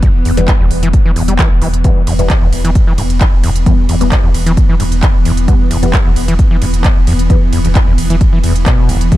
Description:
driving peak-time techno; 132 BPM; 4/4; straight; E minor; A4 = 441 Hz
overdriven acid bass; riff; 0.0-9.2 s; E1 to G3; -18 LUFS; equal; distortion, sidechain pumping, tape echo
saturated sub bass; bass; 0.0-9.1 s; E1; -15 LUFS; equal; tube saturation, sidechain pumping, low-pass filter
swarming drone; drone; 0.0-9.2 s; E3 to B3; -20 LUFS; equal; built-in reverb, sidechain pumping
electronic kick drum; drums; 0.0-9.2 s; -11 LUFS; equal
techno drum kit; drums; 0.0-9.2 s; handclaps, hi-hat, ride cymbal; -21 LUFS; right 1 dB; sidechain pumping on hats, sidechain pumping on cymbals
filtered dub chord stab; stabs; 0.4-9.2 s; E3 to B3; -21 LUFS; left 3 dB; phaser, sidechain pumping, tape echo
digital ambience; dark, warm production; -9 LUFS; side -15 dB against mid
0.0-9.2 A section
0.0 Em
| 0.03 0.48 0.94 1.39 | 1.84 2.30 2.75 3.21 | 3.66 4.12 4.57 5.03 | 5.48 5.94 6.39 6.84 | 7.30 7.75 8.21 8.66 | 9.12

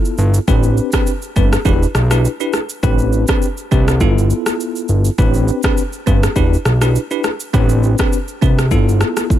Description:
afrobeats; 102 BPM; 4/4; swing 55% on 16ths; A minor; A4 = 439 Hz
bell-like tine electric piano; accompaniment; 0.0-9.4 s; B3 to B4; -19 LUFS; equal; fast stereo tremolo
afro-pop drum kit; drums; 0.1-9.4 s; kick drum, rim click, shaker; -17 LUFS; equal; overdrive
fat analog bass; bass; 0.2-9.0 s; E1 to C2; -14 LUFS; equal
little or no reverb; -13 LUFS; side -12 dB against mid
0.0-9.4 A section
0.5 Am11; 1.7 Em7; 2.8 Am11; 4.0 G13; 5.2 Am11; 6.4 Em7; 7.5 Am11; 8.7 G13
| 0.48 1.07 1.66 2.24 | 2.83 3.42 4.01 4.60 | 5.18 5.77 6.36 6.95 | 7.54 8.12 8.71 9.30

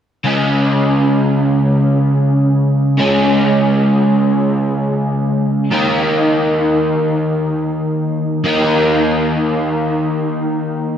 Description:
rock; 44 BPM (dotted quarters); 6/8; straight; A4 = 441 Hz
crunchy overdriven guitar; solo; 0.2-11.0 s; Db3 to Eb4; -13 LUFS; equal; ensemble chorus, diffuse ambient delay
wet lush hall reverb, RT60 2.9 s; dreamy mix soaked in reverb; -13 LUFS; side -9 dB against mid
0.2-11.0 A section
0.2 Db5; 5.7 Eb5
| 0.24 1.61 | 2.98 4.35 | 5.72 7.08 | 8.45 9.81

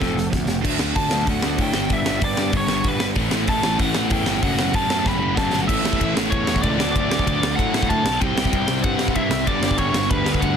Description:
punk rock; 190 BPM; 4/4; straight; A4 = 439 Hz
biting lead guitar; melody; 0.0-10.6 s; A4 to B5; -25 LUFS; equal; overdrive
overdriven electric guitar; riff; 0.0-10.6 s; F2 to D4; -26 LUFS; left 16 dB
overdriven electric guitar; riff; 0.0-10.6 s; G2 to F#4; -27 LUFS; right 14 dB
fuzz picked electric bass; bass; 0.0-10.6 s; F1 to A2; -26 LUFS; equal; overdrive
big rock drum kit; drums; 0.0-10.5 s; crash cymbal, hi-hat, kick drum, ride cymbal, snare drum; -23 LUFS; right 1 dB
scooped high-gain guitar; riff; 3.2-10.6 s; F#2 to D4; -27 LUFS; left 1 dB; distortion
little or no reverb; dense, heavily limited modern master; -18 LUFS; side -7 dB against mid
0.6-5.7 A section; 5.7-10.6 B section
drum fill 0.0-0.6, 5.1-5.7
0.0 F; 0.6 D; 1.7 G; 3.2 A; 4.4 F#m; 5.7 A; 6.8 D; 8.2 C; 9.5 G
0.00 0.32 | 0.63 0.95 1.27 1.58 | 1.90 2.21 2.53 2.85 | 3.16 3.48 3.79 4.11 | 4.42 4.74 5.06 5.37 | 5.69 6.00 6.32 6.63 | 6.95 7.26 7.58 7.89 | 8.21 8.52 8.84 9.15 | 9.47 9.78 10.10 10.41

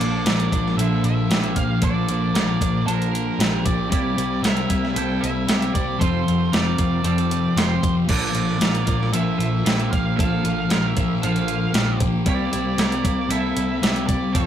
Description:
rock, shoegaze and dream pop; 115 BPM; 4/4; straight; A4 = 440 Hz
octave-fuzz lead guitar; melody; 0.0-14.5 s; Bb4 to G5; -29 LUFS; right 4 dB; distortion
electric guitar at the edge of break-up; arpeggios; 0.0-14.5 s; G4 to A5; -32 LUFS; right 8 dB
crunchy overdriven guitar; riff; 0.0-14.5 s; Bb2 to F4; -29 LUFS; right 9 dB
thick fuzz guitar; riff; 0.0-14.5 s; F2 to C4; -23 LUFS; left 4 dB; distortion
vintage muted picked electric bass; bass; 0.0-14.5 s; F1 to C2; -27 LUFS; equal
crisp 8-bit digital drum machine; drums; 0.0-14.5 s; crash cymbal, hi-hat, kick drum, snare drum; -22 LUFS; equal
moderate studio ambience, RT60 0.5 s; rough rehearsal-room recording; -18 LUFS; side -10 dB against mid
0.0-14.5 A section
0.0 Bbmaj7; 3.9 C7; 6.0 Fsus2; 8.1 Bbmaj7; 12.3 C7
0.26 0.78 1.30 | 1.83 2.35 2.87 3.39 | 3.91 4.43 4.95 5.47 | 6.00 6.52 7.04 7.56 | 8.09 8.61 9.13 9.65 | 10.18 10.70 11.22 11.74 | 12.27 12.79 13.31 13.83 | 14.36

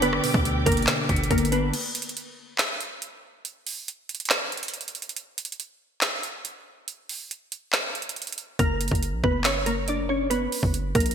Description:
hip hop, trap; 140 BPM; 4/4; half-time; A4 = 440 Hz
glassy wavetable pluck; melody; 0.0-1.7, 8.6-11.1 s; A#3 to D5; -26 LUFS; equal; chorus, low-pass filter, ping-pong delay
clean electric guitar; accompaniment; 0.0-1.7 s; B2 to D4; -28 LUFS; left 1 dB; wide subtle chorus, low-pass filter
warm symphonic string section; sustained chords; 0.0-1.7 s; G4 to D6; -31 LUFS; equal
hard-hitting 808-style bass; bass; 0.0-1.7, 8.6-11.1 s; F#1 to D2; -28 LUFS; equal
trap drum kit; drums; 0.0-11.1 s; crash cymbal, handclaps, hi-hat, kick drum, rim click, snare drum; -26 LUFS; right 1 dB; gated reverb
moderate lush hall reverb, RT60 1.8 s; bright 1980s-style digital production; -24 LUFS; side -8 dB against mid
0.0-1.7 A section; 1.7-11.1 B section
break 1.7-8.6
0.0 G; 1.7 N.C.; 8.6 F#
| 0.02 0.45 0.88 1.31 | 1.74 2.16 2.59 3.02 | 3.45 3.88 4.31 4.74 | 5.16 5.59 6.02 6.45 | 6.88 7.31 7.74 8.16 | 8.59 9.02 9.45 9.88 | 10.31 10.74

